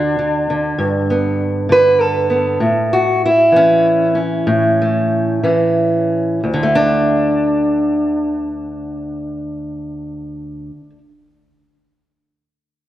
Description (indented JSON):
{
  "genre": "acoustic country blues, solo or duo",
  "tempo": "59-66 BPM (dotted quarters)",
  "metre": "12/8",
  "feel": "straight",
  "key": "unclear",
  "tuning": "A4 = 443 Hz",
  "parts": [
    { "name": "fingerpicked steel-string acoustic guitar", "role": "solo", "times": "0.0-11.0 s", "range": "D2 to B4", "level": "-14 LUFS", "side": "equal", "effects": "none" }
  ],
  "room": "moderate scoring stage reverb, RT60 2.1 s",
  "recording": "worn, warbling old tape, cassette tape, warbly pitch drift",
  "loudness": "-13 LUFS",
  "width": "side -13 dB against mid",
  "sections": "0.0-6.4 A section; 6.4-10.5 B section",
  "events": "slowing down 1.4-6.4",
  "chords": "0.0 N.C.; 0.8 G; 2.6 A; 6.4 D5"
}